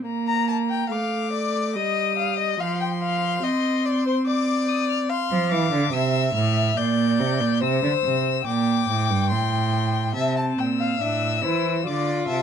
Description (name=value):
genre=classical, baroque-style fugue for string quartet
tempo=71 BPM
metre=3/4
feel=straight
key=Bb major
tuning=A4 = 440 Hz
part: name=rich viola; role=accompaniment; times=0.0-5.1, 10.2-12.4 s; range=F3 to F4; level=-25 LUFS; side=right 1 dB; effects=none
part: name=rich violin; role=melody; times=0.1-12.4 s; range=A5 to G6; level=-28 LUFS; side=left 8 dB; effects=none
part: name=warm violin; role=second line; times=0.3-12.4 s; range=C5 to Bb5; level=-26 LUFS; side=left 5 dB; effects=none
part: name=clear cello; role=bass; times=5.3-12.4 s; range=G2 to F3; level=-23 LUFS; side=right 4 dB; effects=none
room=light reverb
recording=dark, warm production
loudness=-20 LUFS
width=side -8 dB against mid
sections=0.1-10.2 A section; 10.2-12.4 B section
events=none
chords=0.1 Bb; 1.8 Ebadd9/G; 2.6 F5; 4.3 Cmadd9; 5.1 F; 6.8 Gm/Bb; 7.6 C7; 9.3 Am7; 10.2 Am; 11.9 Dm